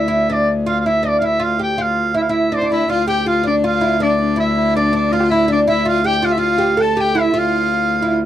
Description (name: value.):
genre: medieval dance.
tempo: 162 BPM.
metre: 3/4.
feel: straight.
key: D minor.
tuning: A4 = 440 Hz.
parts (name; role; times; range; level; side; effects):
bright shawm; melody; 0.0-8.2 s; C5 to A5; -19 LUFS; right 2 dB; none.
oud; second line; 0.0-8.2 s; D4 to A4; -19 LUFS; right 2 dB; none.
clear viola da gamba; drone; 0.0-8.3 s; D2; -21 LUFS; left 2 dB; none.
rich fiddle; second line; 2.7-8.1 s; D4 to A4; -21 LUFS; left 7 dB; none.
room: light reverb.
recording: dry, close 1970s-style studio recording.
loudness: -14 LUFS.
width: side -11 dB against mid.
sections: 0.0-2.9 A section; 2.9-8.3 A section.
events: none.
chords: none.